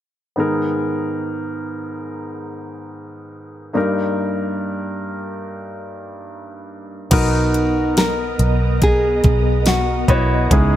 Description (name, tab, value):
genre	pop ballad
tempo	71 BPM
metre	4/4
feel	straight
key	G# minor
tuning	A4 = 438 Hz
part	clear baby grand piano	accompaniment	0.4-10.8 s	G2 to D#5	-22 LUFS	left 1 dB	none
part	nylon-string guitar	melody	7.1-10.8 s	D#4 to A#4	-20 LUFS	equal	none
part	ethereal airy pad	sustained chords	7.7-10.8 s	C#3 to D#5	-26 LUFS	right 1 dB	ensemble chorus, built-in reverb
part	vintage muted fingered electric bass	bass	7.1-10.8 s	B1 to C#2	-19 LUFS	equal	none
part	smooth R&B drum kit	drums	7.1-10.7 s	crash cymbal, hi-hat, kick drum, snare drum	-18 LUFS	equal	none
room	little or no reverb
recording	none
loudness	-16 LUFS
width	side -12 dB against mid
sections	0.4-7.1 A section; 7.1-10.8 B section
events	none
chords	0.4 G#madd9; 3.8 D#/G; 7.1 Bmaj7